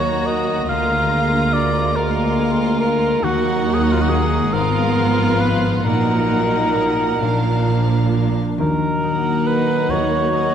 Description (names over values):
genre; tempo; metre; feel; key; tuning
classical, slow romantic movement for symphony orchestra; 43-48 BPM (dotted quarters); 6/8; rubato; Eb minor; A4 = 440 Hz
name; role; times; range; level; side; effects
warm chamber violin section; melody; 0.0-10.5 s; F5 to Bb5; -30 LUFS; left 3 dB; none
rich symphonic violin section; second line; 0.0-10.5 s; D4 to Gb4; -28 LUFS; left 2 dB; none
warm cor anglais; second line; 0.0-10.5 s; F4 to F5; -21 LUFS; right 2 dB; none
rich chamber viola section; accompaniment; 0.0-10.5 s; Bb3 to Cb4; -24 LUFS; right 2 dB; none
mellow French horn section; sustained chords; 0.0-10.5 s; F3 to Eb4; -26 LUFS; left 3 dB; none
concert harp; arpeggios; 0.0-10.5 s; Ab2 to Gb5; -24 LUFS; left 6 dB; none
rich chamber double bass section; bass; 0.0-10.5 s; Ab1 to Eb2; -24 LUFS; right 3 dB; none
warm chamber cello section; bass; 0.0-10.5 s; D2 to Eb3; -26 LUFS; right 3 dB; none
room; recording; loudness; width
wet concert hall reverb, RT60 2.5 s; none; -16 LUFS; side -8 dB against mid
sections
0.0-10.5 A section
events
none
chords
0.0 Ebm; 0.7 Bb7/D; 3.2 Ebm; 4.5 Fdim/Ab; 5.8 Ebm/Bb; 7.2 Bb; 8.6 Ebm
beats
| 0.70 1.96 | 3.24 4.53 | 5.84 7.21 | 8.59 9.90